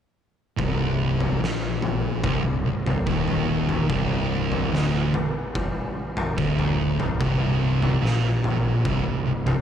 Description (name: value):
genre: stoner and doom metal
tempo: 73 BPM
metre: 4/4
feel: straight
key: C minor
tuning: A4 = 441 Hz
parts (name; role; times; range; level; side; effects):
- thick fuzz guitar; riff; 0.6-9.6 s; C2 to Bb2; -26 LUFS; left 7 dB; distortion
- thick fuzz guitar; riff; 0.6-9.6 s; C2 to Bb2; -25 LUFS; right 7 dB; distortion
- fuzz picked electric bass; bass; 0.6-9.6 s; C1 to Bb1; -30 LUFS; equal; overdrive
- oversized low-tuned drum kit; drums; 0.6-9.6 s; kick drum, snare drum, toms; -27 LUFS; equal; none
room: small room reverb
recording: dark, warm production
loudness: -21 LUFS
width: side -9 dB against mid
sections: 0.6-9.6 A section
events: none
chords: 0.6 Cm